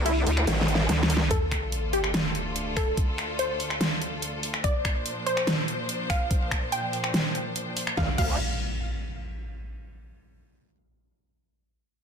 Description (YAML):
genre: heavy wobble dubstep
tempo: 144 BPM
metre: 4/4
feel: half-time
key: D minor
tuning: A4 = 440 Hz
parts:
  - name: bright studio string section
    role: sustained chords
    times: 0.0-8.2 s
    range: D2 to D5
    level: -34 LUFS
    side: left 1 dB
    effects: sidechain pumping
  - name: vowel-sweep wobble bass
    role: bass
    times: 0.0-1.3 s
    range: C2 to D2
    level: -24 LUFS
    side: equal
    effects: chorus, overdrive
  - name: wide unison pluck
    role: melody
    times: 0.1-8.3 s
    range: E4 to G5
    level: -31 LUFS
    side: equal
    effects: digital delay
  - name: dubstep drum kit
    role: drums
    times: 0.1-8.3 s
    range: crash cymbal, finger snaps, hi-hat, ride cymbal, snare drum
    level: -28 LUFS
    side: equal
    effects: overdrive
  - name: growl bass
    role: bass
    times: 0.5-0.9, 8.0-8.4 s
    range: A1 to D2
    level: -27 LUFS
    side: equal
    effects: chorus, overdrive
  - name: electronic kick drum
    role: drums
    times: 1.3-8.3 s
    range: none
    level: -27 LUFS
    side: equal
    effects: overdrive
  - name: sub drop and impact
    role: sound effects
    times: 1.3-3.0, 8.0-9.6 s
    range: none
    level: -32 LUFS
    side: equal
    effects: none
room: light reverb, digital ambience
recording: dense, heavily limited modern master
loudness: -24 LUFS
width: side -6 dB against mid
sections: 0.0-1.3 A section; 1.3-8.0 B section; 8.0-9.6 C section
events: drop 0.0-1.3; drum fill 0.5-1.3; impact 1.3-3.0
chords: 0.0 Dsus2; 1.3 Dm; 4.6 Bbadd9; 8.0 N.C.